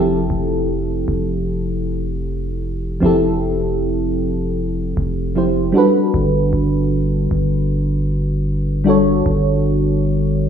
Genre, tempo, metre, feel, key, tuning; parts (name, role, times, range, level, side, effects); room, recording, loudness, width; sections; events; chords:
contemporary R&B; 77 BPM; 4/4; straight; F major; A4 = 440 Hz
mellow FM electric piano; accompaniment; 0.0-10.5 s; F3 to Db5; -18 LUFS; equal; chorus
long sustained 808-style bass; bass; 0.0-10.5 s; F1 to G1; -20 LUFS; equal
moderate plate reverb, RT60 2.4 s; dreamy mix soaked in reverb, small room ambience; -16 LUFS; side -8 dB against mid
0.0-10.5 A section
0.0 Fmaj9; 5.8 Gmaj9